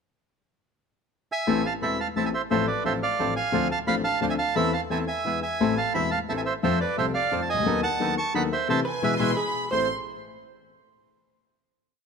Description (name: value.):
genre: tango.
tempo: 175 BPM.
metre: 3/4.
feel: rubato.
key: A harmonic minor.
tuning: A4 = 441 Hz.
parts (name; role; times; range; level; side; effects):
bandoneon; melody; 1.3-9.9 s; B4 to C#6; -26 LUFS; right 4 dB; none.
warm grand piano; accompaniment; 1.5-9.9 s; E1 to A4; -26 LUFS; left 5 dB; none.
bandoneon; stabs; 1.5-9.9 s; A2 to C5; -34 LUFS; right 8 dB; none.
vintage hollow-body jazz guitar; second line; 8.8-9.9 s; G#4 to C5; -31 LUFS; right 3 dB; none.
warm studio violin section; second line; 8.9-9.9 s; G#5 to C6; -31 LUFS; equal; none.
room: light reverb.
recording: close, detailed microphones.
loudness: -23 LUFS.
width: side -6 dB against mid.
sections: 0.4-1.5 pickup bar; 1.5-9.7 variation; 9.7-10.8 final chord.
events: band accent 8.7-9.7.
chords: 0.4 N.C.; 1.5 Am; 2.5 F/A; 3.5 Dm7; 4.6 Am/E; 5.2 E; 5.6 Am; 6.6 F; 7.7 B7/D#; 8.7 Am; 9.0 E; 9.7 Am.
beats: | 0.44 0.78 1.13 | 1.47 1.82 2.16 | 2.51 2.85 3.19 | 3.53 3.87 4.22 | 4.56 4.90 5.25 | 5.59 5.94 6.28 | 6.63 6.97 7.32 | 7.66 8.00 8.34 | 8.69 9.03 9.38 | 9.72.